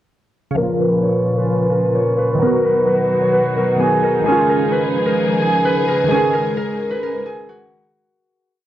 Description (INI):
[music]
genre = hip hop, trap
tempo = 130 BPM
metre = 4/4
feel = half-time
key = Bb phrygian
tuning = A4 = 444 Hz
[part]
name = glassy digital keys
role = accompaniment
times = 0.5-8.0 s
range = Bb2 to Ab4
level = -21 LUFS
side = right 1 dB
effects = chorus, phaser, low-pass filter
[part]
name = concert harp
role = melody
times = 0.6-8.7 s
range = Gb4 to Db5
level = -16 LUFS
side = equal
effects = low-pass filter
[part]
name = dark studio string section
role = sustained chords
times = 0.6-7.9 s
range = Bb2 to Ab4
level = -22 LUFS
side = right 1 dB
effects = low-pass filter
[sound]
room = studio reverb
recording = dry, gritty hardware recording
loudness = -14 LUFS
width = side -12 dB against mid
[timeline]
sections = 0.6-8.0 breakdown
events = filter sweep 0.6-8.0; fade-out 6.1-8.0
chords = 0.6 Bbm; 2.4 B; 4.3 Dbadd9; 6.1 Absus4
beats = | 0.57 1.03 1.49 1.95 | 2.41 2.88 3.34 3.80 | 4.26 4.72 5.18 5.64 | 6.11 6.57 7.03 7.49